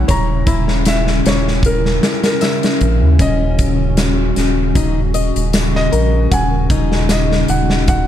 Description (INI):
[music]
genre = trip hop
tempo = 77 BPM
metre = 4/4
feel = swing 55% on 16ths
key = Eb phrygian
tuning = A4 = 441 Hz
[part]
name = felt-muted upright piano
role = melody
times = 0.0-8.1 s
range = Bb4 to Bb5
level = -22 LUFS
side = equal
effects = tape echo
[part]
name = warbly tape-like pad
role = sustained chords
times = 0.0-8.1 s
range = Db3 to Gb4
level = -20 LUFS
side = left 1 dB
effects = chorus, built-in reverb
[part]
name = flamenco guitar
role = arpeggios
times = 0.0-8.1 s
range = Db4 to Gb5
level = -24 LUFS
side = left 5 dB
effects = tape echo
[part]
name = round analog bass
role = bass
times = 0.0-8.1 s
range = Eb1 to Eb2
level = -16 LUFS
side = equal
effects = none
[part]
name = big rock drum kit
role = drums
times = 0.1-8.1 s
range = hi-hat, kick drum, snare drum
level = -17 LUFS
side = equal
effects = none
[part]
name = tambourine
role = percussion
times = 0.9-7.3 s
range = none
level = -32 LUFS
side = right 2 dB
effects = none
[sound]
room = small room ambience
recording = dark, warm production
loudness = -12 LUFS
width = side -10 dB against mid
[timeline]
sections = 0.0-8.1 A section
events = none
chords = 0.0 Dbm/Eb; 3.2 Ebm7